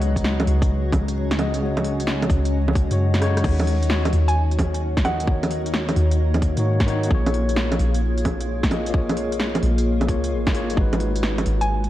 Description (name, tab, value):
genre	future garage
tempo	131 BPM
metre	4/4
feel	swing 67% on 16ths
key	unclear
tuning	A4 = 441 Hz
part	tine electric piano	accompaniment	0.0-11.9 s	C#3 to D#5	-26 LUFS	left 2 dB	medium stereo tremolo, sidechain pumping, tape echo
part	granular cloud pad	sustained chords	0.0-11.9 s	G#3 to D#5	-29 LUFS	equal	built-in reverb, sidechain pumping
part	soft 808-style bass	bass	0.0-11.9 s	G#1 to G#2	-22 LUFS	equal	sidechain pumping
part	garage drum kit	drums	0.0-11.9 s	bongos, crash cymbal, hi-hat, rim click, snare drum	-26 LUFS	right 1 dB	vintage 12-bit sampler grit
part	drifting glass-harmonics texture	texture	0.0-3.5 s	F#3 to F#4	-38 LUFS	equal	none
part	electronic kick drum	drums	0.2-10.9 s	none	-22 LUFS	equal	vintage 12-bit sampler grit
part	mallet-like synth pluck	melody	4.3-5.4, 11.6-11.8 s	F#5 to G#5	-28 LUFS	right 2 dB	chorus, tape echo
room	light reverb, digital ambience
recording	vinyl crackle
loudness	-18 LUFS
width	side -14 dB against mid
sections	0.0-3.4 A section; 3.4-11.9 A section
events	kick drops out 3.0-3.4; drum fill 3.1-3.4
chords	0.0 C#sus4; 3.4 D#m7; 7.1 A#m7; 10.8 G#m7